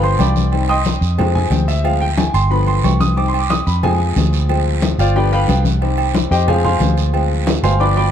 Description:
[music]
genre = latin, salsa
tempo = 181 BPM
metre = 4/4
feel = straight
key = C harmonic minor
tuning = A4 = 439 Hz
[part]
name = clear concert grand piano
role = accompaniment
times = 0.0-8.1 s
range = D3 to Eb6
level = -19 LUFS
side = left 2 dB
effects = none
[part]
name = vintage muted fingered electric bass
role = bass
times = 0.0-8.1 s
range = G1 to F2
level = -16 LUFS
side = right 1 dB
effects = none
[part]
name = agogo bells and timbales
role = percussion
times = 0.0-8.1 s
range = none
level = -25 LUFS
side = right 10 dB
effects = none
[part]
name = congas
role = percussion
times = 0.0-8.1 s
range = none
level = -21 LUFS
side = left 4 dB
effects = none
[part]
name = guiro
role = percussion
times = 0.2-8.1 s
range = none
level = -30 LUFS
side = right 9 dB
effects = none
[sound]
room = light reverb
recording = dark, warm production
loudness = -13 LUFS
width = side -9 dB against mid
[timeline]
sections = 0.0-8.1 A section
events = grand piano solo 0.0-8.1; drum fill 7.5-8.1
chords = 0.0 G7; 0.5 Cm; 1.2 Fm; 1.8 Dm7b5; 2.5 G7; 3.2 Cm; 3.8 Fm; 4.5 Dm7b5; 5.2 G7; 5.8 Cm; 6.5 Fm; 7.1 Dm7b5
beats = 0.19 | 0.53 0.86 1.19 1.52 | 1.85 2.18 2.51 2.84 | 3.17 3.50 3.83 4.16 | 4.49 4.83 5.16 5.49 | 5.82 6.15 6.48 6.81 | 7.14 7.47 7.80

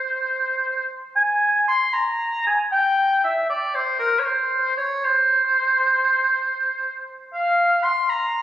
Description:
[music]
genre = classical, baroque-style fantasia for unaccompanied oboe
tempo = 78 BPM (dotted quarters)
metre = 12/8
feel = rubato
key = unclear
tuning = A4 = 440 Hz
[part]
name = warm oboe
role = solo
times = 0.0-8.4 s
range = Bb4 to C6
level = -18 LUFS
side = equal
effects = none
[sound]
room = wet scoring stage reverb, RT60 1.9 s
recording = recorded on a phone in the room, studio ambience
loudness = -18 LUFS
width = side -12 dB against mid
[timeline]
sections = 0.0-8.4 A section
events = none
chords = none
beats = 0.38 | 1.17 1.94 2.73 3.50 | 4.27 5.03 5.80 6.57 | 7.33 8.10

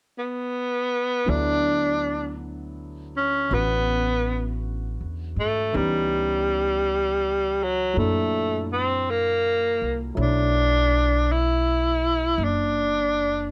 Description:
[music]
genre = jazz ballad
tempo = 54 BPM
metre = 4/4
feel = swing 67% on 8ths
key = D major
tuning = A4 = 440 Hz
[part]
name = breathy tenor saxophone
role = melody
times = 0.2-13.5 s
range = F#3 to E4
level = -25 LUFS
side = equal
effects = none
[part]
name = warm grand piano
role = accompaniment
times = 1.3-13.5 s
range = A#2 to C#5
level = -34 LUFS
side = equal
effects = none
[part]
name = upright bass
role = bass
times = 1.3-13.5 s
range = F#1 to G#2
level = -30 LUFS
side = equal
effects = none
[sound]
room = light reverb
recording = close, detailed microphones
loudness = -24 LUFS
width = mono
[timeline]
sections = 0.0-1.3 A section; 1.3-13.5 B section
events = none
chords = 0.0 N.C.; 1.3 D69; 5.7 C#m7b5; 8.0 F#7alt; 10.2 Bm11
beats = 0.15 | 1.27 2.39 3.51 4.62 | 5.73 6.85 7.96 9.07 | 10.18 11.29 12.40 13.51

